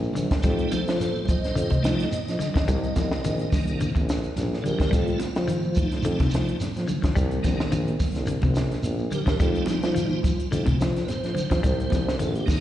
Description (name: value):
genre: afrobeat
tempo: 107 BPM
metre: 4/4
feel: swing 54% on 16ths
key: F mixolydian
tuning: A4 = 440 Hz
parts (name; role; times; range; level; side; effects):
- warm tuba; bass; 0.0-12.6 s; Bb1 to F3; -28 LUFS; equal; none
- shekere; percussion; 0.0-12.6 s; none; -34 LUFS; right 1 dB; slapback echo
- congas; percussion; 0.1-12.6 s; none; -34 LUFS; right 3 dB; slapback echo
- clean electric guitar; arpeggios; 0.2-12.4 s; C3 to G3; -29 LUFS; left 4 dB; tremolo, slapback echo
- compact cocktail drum kit; drums; 0.2-12.6 s; hi-hat, kick drum, snare drum; -26 LUFS; equal; none
- tonewheel organ; accompaniment; 0.4-12.6 s; Eb3 to Eb5; -30 LUFS; right 3 dB; slow rotary speaker, chorus vibrato, slapback echo
room: small room ambience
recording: live gig heard through the venue's PA, recital hall reverb, nothing above 10.5 kHz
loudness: -22 LUFS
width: side -12 dB against mid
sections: 0.0-12.6 A section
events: tonewheel organ solo 0.0-12.6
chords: 0.4 F7; 2.7 Cm7; 4.9 F7; 7.2 Cm7; 9.4 F7; 11.6 Cm7